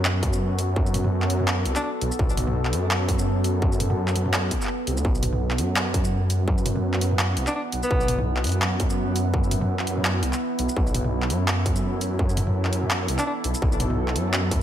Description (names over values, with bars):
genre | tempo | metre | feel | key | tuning
half-time drum and bass | 168 BPM | 4/4 | swing 56% on 16ths, half-time | unclear | A4 = 440 Hz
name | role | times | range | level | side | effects
deep dark ambient pad | sustained chords | 0.0-14.6 s | B3 to F#5 | -29 LUFS | right 2 dB | chorus, built-in reverb, sidechain pumping
dark detuned saw bass | bass | 0.0-14.6 s | B1 to F#2 | -24 LUFS | equal | none
drum and bass drum kit | drums | 0.1-14.6 s | handclaps, hi-hat, shaker, toms | -28 LUFS | equal | overdrive
electronic kick drum | drums | 0.2-14.6 s | none | -24 LUFS | equal | distortion
breathy alto saxophone | melody | 1.8-1.9, 7.5-8.2, 13.2-13.3 s | B3 to D4 | -30 LUFS | left 1 dB | ping-pong delay
room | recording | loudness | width
light reverb, digital ambience | none | -21 LUFS | side -11 dB against mid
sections
0.0-14.6 A section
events
none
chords
0.0 B5